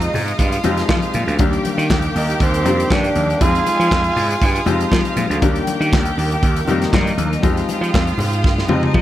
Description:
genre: disco.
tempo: 119 BPM.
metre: 4/4.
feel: straight.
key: unclear.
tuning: A4 = 435 Hz.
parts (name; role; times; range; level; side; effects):
clear studio string section; second line; 0.0-9.0 s; Eb4 to Ab5; -24 LUFS; right 2 dB; none.
clear concert grand piano; accompaniment; 0.0-9.0 s; Eb3 to Ab4; -23 LUFS; left 4 dB; none.
clear studio string section; sustained chords; 0.0-9.0 s; Eb3 to Eb6; -28 LUFS; right 1 dB; none.
gritty slap bass; bass; 0.0-9.0 s; D2 to F3; -20 LUFS; right 1 dB; overdrive.
modern studio drum kit; drums; 0.0-9.0 s; handclaps, hi-hat, kick drum, snare drum, toms; -20 LUFS; equal; none.
congas; percussion; 0.1-9.0 s; none; -26 LUFS; left 5 dB; none.
growling tenor saxophone; melody; 2.2-4.9 s; C4 to F4; -19 LUFS; right 2 dB; none.
room: studio reverb.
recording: none.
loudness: -15 LUFS.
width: side -13 dB against mid.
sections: 0.0-9.0 A section.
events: drum fill 8.4-9.0.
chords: 0.0 Fm9; 1.4 Ebmaj7; 3.4 Fm9; 5.4 Ebmaj7; 7.4 Fm9.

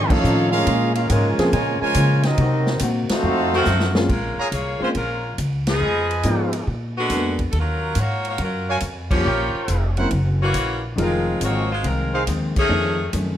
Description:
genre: jazz, big band swing.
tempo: 140 BPM.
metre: 4/4.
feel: swing 68% on 8ths.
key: Bb minor.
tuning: A4 = 441 Hz.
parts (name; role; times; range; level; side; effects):
clear trumpet section; melody; 0.0-3.9 s; C4 to Ab5; -23 LUFS; right 1 dB; none.
warm trombone section; second line; 0.0-3.9 s; Db3 to Gb4; -25 LUFS; right 1 dB; none.
vintage hollow-body jazz guitar; accompaniment; 0.0-4.0, 11.0-13.4 s; F2 to Gb4; -28 LUFS; left 3 dB; none.
upright bass; bass; 0.0-13.4 s; F1 to Db3; -22 LUFS; equal; none.
warm concert grand piano; accompaniment; 0.1-13.0 s; F3 to A4; -24 LUFS; equal; none.
swinging big-band drum kit; drums; 0.1-13.3 s; crash cymbal, hi-hat, kick drum, ride cymbal, snare drum; -28 LUFS; equal; none.
dark trombone section; sustained chords; 1.1-3.2 s; Gb3 to Bb4; -30 LUFS; equal; none.
edgy saxophone section; melody; 3.6-13.1 s; D3 to Db5; -24 LUFS; left 1 dB; none.
clear trumpet section; stabs; 4.4-12.2 s; Eb4 to Bb5; -26 LUFS; right 1 dB; none.
room: moderate large studio reverb, RT60 1.3 s.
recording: none.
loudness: -18 LUFS.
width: side -11 dB against mid.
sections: 0.0-4.1 A section; 4.1-13.4 B section.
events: band accent 0.0, 3.0, 5.6, 9.0, 12.5; drum fill 3.7-4.1.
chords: 0.0 F7alt; 0.7 Bbm7; 2.4 Cm7b5; 3.2 F7b9; 4.1 Bbm7; 5.8 Fm7b5; 6.7 Bb7b9; 7.5 Ebm11; 9.3 Gm7b5; 10.1 Gb7; 11.0 Fm7; 12.7 F7alt.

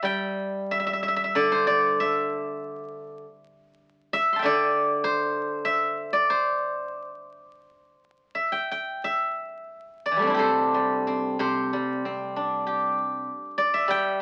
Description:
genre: chinese traditional, Chinese solo plucked strings.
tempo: 81-99 BPM.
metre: 4/4.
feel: rubato.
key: C gong mode.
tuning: A4 = 438 Hz.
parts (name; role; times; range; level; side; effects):
steel-string zither; solo; 0.0-14.2 s; C3 to C6; -26 LUFS; equal; none.
room: moderate studio ambience, RT60 0.5 s.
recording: very old 78 rpm record, vinyl crackle.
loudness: -25 LUFS.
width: mono.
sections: 0.0-9.0 A section; 9.0-14.2 B section.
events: none.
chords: none.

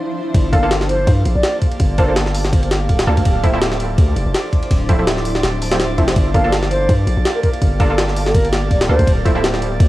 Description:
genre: drum and bass, jungle.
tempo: 165 BPM.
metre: 4/4.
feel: swing 55% on 16ths.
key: G dorian.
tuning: A4 = 440 Hz.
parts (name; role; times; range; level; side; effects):
long sustained 808-style bass; bass; 0.3-9.9 s; D1 to G2; -19 LUFS; equal; none.
jungle sampler-style drum kit; drums; 0.3-9.9 s; hi-hat, kick drum, ride cymbal, snare drum; -16 LUFS; equal; high-pass filter on kick, high-pass filter on cymbals, high-pass filter on snare, high-pass filter on hats.
drifting glass-harmonics texture; texture; 1.0-9.9 s; D5 to D6; -31 LUFS; right 4 dB; chorus, built-in reverb.
mellow hollow silver concert flute; melody; 0.5-2.1, 6.3-9.1 s; Bb4 to F5; -22 LUFS; equal; vintage 12-bit sampler grit, cassette tape, dub echo.
orchestra-hit-like synth stab; stabs; 0.5-9.4 s; F3 to A4; -22 LUFS; right 1 dB; built-in reverb, dub echo.
room: little or no reverb.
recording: home recording on cassette.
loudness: -13 LUFS.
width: side -16 dB against mid.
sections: 0.3-9.9 A section.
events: break 0.0-0.3; drop 0.3-9.9.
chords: 0.3 Gm9; 3.3 Dm9; 6.2 Gm9; 9.1 Dm9.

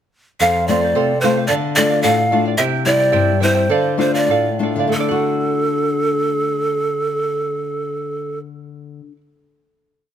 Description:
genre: andean folk, Andean ensemble.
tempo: 89-111 BPM.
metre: 2/4.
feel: straight.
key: unclear.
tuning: A4 = 438 Hz.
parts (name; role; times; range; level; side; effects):
breathy large pan pipes; melody; 0.4-8.4 s; A4 to F5; -18 LUFS; right 2 dB; none.
charango; accompaniment; 0.4-9.2 s; E4 to G5; -21 LUFS; right 8 dB; none.
nylon-string guitar; accompaniment; 0.4-9.2 s; F2 to F#4; -20 LUFS; left 6 dB; none.
room: light reverb.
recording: close, detailed microphones.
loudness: -15 LUFS.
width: side -9 dB against mid.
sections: 0.4-4.9 A section; 4.9-7.6 final chord.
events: slowing down 2.6-4.9.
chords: 0.4 F; 1.5 Dm; 2.6 C; 3.7 Dm; 4.9 D.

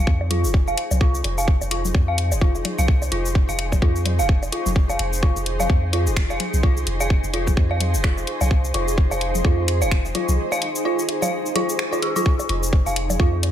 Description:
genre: minimal techno.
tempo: 128 BPM.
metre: 4/4.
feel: swing 58% on 16ths.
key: F minor.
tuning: A4 = 438 Hz.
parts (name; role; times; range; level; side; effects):
dark detuned synth bell; riff; 0.0-13.3 s; F4 to F5; -26 LUFS; equal; chorus, phaser, sidechain pumping, low-pass filter, ping-pong delay.
punchy sub bass; bass; 0.0-13.5 s; F1 to F2; -23 LUFS; equal; sidechain pumping.
granular cloud pad; texture; 0.0-13.5 s; Eb4 to C5; -29 LUFS; right 1 dB; built-in reverb, sidechain pumping.
electronic kick drum; drums; 0.1-13.3 s; none; -18 LUFS; equal; small room reverb.
bongos, congas and woodblock; percussion; 0.2-13.5 s; none; -31 LUFS; left 1 dB; small room reverb, ping-pong delay.
garage drum kit; drums; 0.3-13.5 s; cabasa, finger snaps, hi-hat; -28 LUFS; left 2 dB; small room reverb.
room: digital ambience.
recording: none.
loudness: -18 LUFS.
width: side -10 dB against mid.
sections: 0.0-12.3 A section; 12.3-13.5 B section.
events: fade-in on ambient pad 0.0-12.3; drop 12.3-13.5.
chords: 0.0 Fm.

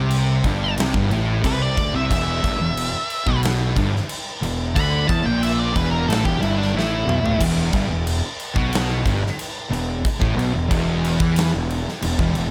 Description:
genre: stoner and doom metal.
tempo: 91 BPM.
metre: 4/4.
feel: straight.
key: E minor.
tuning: A4 = 441 Hz.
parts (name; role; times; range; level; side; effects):
octave-fuzz lead guitar; melody; 0.0-7.4 s; D4 to D6; -28 LUFS; equal; distortion, digital delay.
thick fuzz guitar; riff; 0.0-12.5 s; E2 to E3; -26 LUFS; equal; distortion.
thick fuzz guitar; riff; 0.0-12.5 s; E2 to E3; -29 LUFS; equal; none.
fuzz fingered electric bass; bass; 0.0-12.5 s; E1 to E2; -27 LUFS; equal; overdrive.
big rock drum kit; drums; 0.1-12.5 s; crash cymbal, kick drum, snare drum, toms; -27 LUFS; equal; none.
room: small room ambience.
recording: none.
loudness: -21 LUFS.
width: mono.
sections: 0.0-7.4 A section; 7.4-12.5 B section.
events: lead electric guitar solo 0.0-7.4; drum fill 6.7-7.4.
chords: 0.0 G5; 2.1 Em.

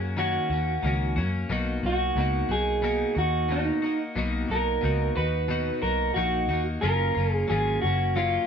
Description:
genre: indie pop, bedroom pop.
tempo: 90 BPM.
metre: 4/4.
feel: straight.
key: unclear.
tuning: A4 = 441 Hz.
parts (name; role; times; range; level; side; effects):
twelve-string electric guitar; accompaniment; 0.0-8.5 s; B2 to Gb4; -30 LUFS; left 3 dB; warbly pitch drift.
vintage muted picked electric bass; bass; 0.0-8.4 s; Gb1 to Gb2; -28 LUFS; equal; none.
electric guitar through a small old amp; melody; 0.2-8.5 s; D#4 to B4; -26 LUFS; right 2 dB; none.
room: moderate studio reverb, RT60 0.7 s.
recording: band playing live in one room.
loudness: -23 LUFS.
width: side -7 dB against mid.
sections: 0.0-8.5 A section.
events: none.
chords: 0.0 Ebm7; 1.5 Bmaj7; 6.8 Gbmaj7.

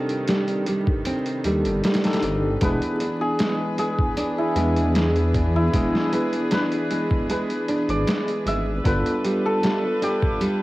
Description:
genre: trip hop.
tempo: 77 BPM.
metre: 4/4.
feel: straight.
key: unclear.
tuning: A4 = 441 Hz.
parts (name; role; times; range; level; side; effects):
bell-like tine electric piano; accompaniment; 0.0-10.6 s; B3 to A4; -27 LUFS; equal; tremolo, cassette tape, tape echo.
rich chamber string section; sustained chords; 0.0-10.6 s; C3 to B4; -30 LUFS; equal; cassette tape.
nylon-string guitar; arpeggios; 0.0-10.6 s; G3 to D4; -27 LUFS; right 1 dB; cassette tape, analog delay.
trip hop sampler-style drum kit; drums; 0.1-10.6 s; hi-hat, kick drum, snare drum; -25 LUFS; equal; cassette tape.
dark detuned saw bass; bass; 1.4-9.0 s; E1 to E2; -23 LUFS; equal; none.
santur; melody; 2.6-10.6 s; E4 to E5; -26 LUFS; equal; cassette tape, dub echo.
room: small room ambience.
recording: home recording on cassette, vinyl crackle.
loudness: -20 LUFS.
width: side -18 dB against mid.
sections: 0.0-10.6 A section.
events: none.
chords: 0.0 Cm6; 2.6 E7; 8.9 G7.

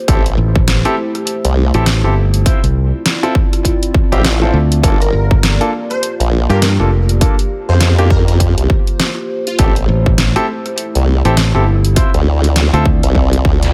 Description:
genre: glitch hop.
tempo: 101 BPM.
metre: 4/4.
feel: swing 60% on 16ths.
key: unclear.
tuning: A4 = 439 Hz.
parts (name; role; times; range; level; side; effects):
dark analog pad; sustained chords; 0.0-13.7 s; A3 to D5; -25 LUFS; equal; chorus, phaser, sidechain pumping.
clear concert grand piano; stabs; 0.1-12.8 s; Bb3 to C5; -22 LUFS; equal; sidechain pumping, delay.
formant-sweep wobble bass; bass; 0.1-13.7 s; G1 to F2; -15 LUFS; equal; chorus, tube saturation.
dubstep drum kit; drums; 0.1-13.7 s; hi-hat, rim click, snare drum; -20 LUFS; equal; overdrive.
electronic kick drum; drums; 0.1-13.6 s; none; -16 LUFS; equal; overdrive.
modern bright fingered electric bass; bass; 0.4-13.0 s; F1 to G2; -15 LUFS; equal; none.
plucky unison lead; melody; 5.0-9.7 s; F4 to C5; -26 LUFS; equal; ensemble chorus, delay.
room: little or no reverb.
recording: none.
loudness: -13 LUFS.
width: mono.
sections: 0.0-13.7 A section.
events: none.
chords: 0.1 Am7; 2.5 Dm9; 4.8 Gm7; 7.2 C7sus4; 9.6 Am7; 12.0 Dm9.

